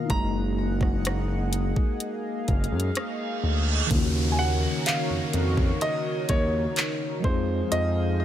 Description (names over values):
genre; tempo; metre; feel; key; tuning
contemporary R&B; 63 BPM; 4/4; straight; unclear; A4 = 440 Hz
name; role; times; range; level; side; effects
warm grand piano; melody; 0.0-8.2 s; C5 to Bb5; -30 LUFS; equal; ping-pong delay
mellow tine electric piano; accompaniment; 0.0-8.2 s; Db3 to Ab4; -31 LUFS; left 1 dB; medium stereo tremolo
chorused pulse-width pad; sustained chords; 0.0-8.2 s; Bb3 to Gb5; -32 LUFS; right 1 dB; none
smooth gliding synth bass; bass; 0.1-8.2 s; Gb1 to Gb2; -26 LUFS; equal; none
smooth R&B drum kit; drums; 0.1-7.9 s; handclaps, hi-hat, kick drum, rim click; -26 LUFS; equal; overdrive
reverse cymbal and downlifter; sound effects; 3.1-8.2 s; none; -34 LUFS; right 3 dB; none
room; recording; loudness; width
little or no reverb; none; -23 LUFS; side -11 dB against mid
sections
0.0-3.9 A section; 3.9-8.2 B section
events
reverse cymbal 3.1-3.9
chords
0.1 Gb69; 3.9 Ebm7; 7.2 Fm7